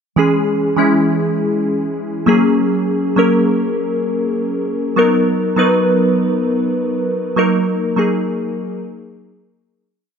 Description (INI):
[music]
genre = afrobeats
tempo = 100 BPM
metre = 4/4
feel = swing 55% on 16ths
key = unclear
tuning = A4 = 440 Hz
[part]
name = glassy digital keys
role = solo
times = 0.2-9.8 s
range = E3 to B4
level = -14 LUFS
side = equal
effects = chorus
[sound]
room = light reverb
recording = none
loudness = -14 LUFS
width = side -7 dB against mid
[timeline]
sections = 0.2-9.8 chorus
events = fade-out 7.4-9.8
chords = 0.2 C#m; 2.3 F#add9; 5.0 Bmaj7; 7.4 D#m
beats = | 0.17 0.78 1.38 1.98 | 2.58 3.17 3.77 4.38 | 4.97 5.58 6.17 6.78 | 7.38 7.97 8.57 9.18